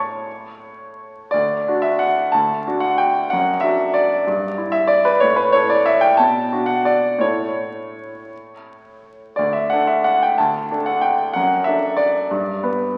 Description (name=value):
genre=classical, piano waltz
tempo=161-199 BPM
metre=3/4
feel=rubato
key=D major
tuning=A4 = 440 Hz
part: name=clear concert grand piano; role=solo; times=0.0-13.0 s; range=D2 to D6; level=-19 LUFS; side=equal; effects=none
room=wet scoring stage reverb, RT60 1.8 s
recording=very old 78 rpm record, vinyl crackle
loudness=-18 LUFS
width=mono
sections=0.0-1.3 A section; 1.3-13.0 B section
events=none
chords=0.0 A; 1.3 D; 3.3 D/F#; 4.3 Em/G; 5.2 A5; 6.2 Bm7; 7.2 A; 9.4 D5; 11.3 D/F#; 12.3 G